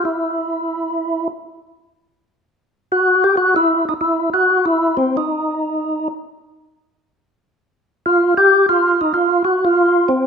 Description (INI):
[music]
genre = jazz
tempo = 187 BPM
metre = 4/4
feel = swing 62% on 8ths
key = unclear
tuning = A4 = 440 Hz
[part]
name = percussive tonewheel organ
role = solo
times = 0.0-10.3 s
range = C4 to G4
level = -14 LUFS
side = equal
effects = overdrive, chorus vibrato, slow rotary speaker
[sound]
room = moderate large studio reverb, RT60 1.2 s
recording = minimal, uncompressed stereo recording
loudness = -14 LUFS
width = side -6 dB against mid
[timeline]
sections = 0.0-2.7 A section; 2.7-10.3 A section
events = none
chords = none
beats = | 0.14 0.46 0.78 1.10 | 1.43 1.75 2.07 2.39 | 2.71 3.03 3.35 3.67 | 3.99 4.31 4.63 4.95 | 5.27 5.59 5.91 6.23 | 6.55 6.87 7.19 7.51 | 7.83 8.15 8.47 8.80 | 9.12 9.44 9.76 10.08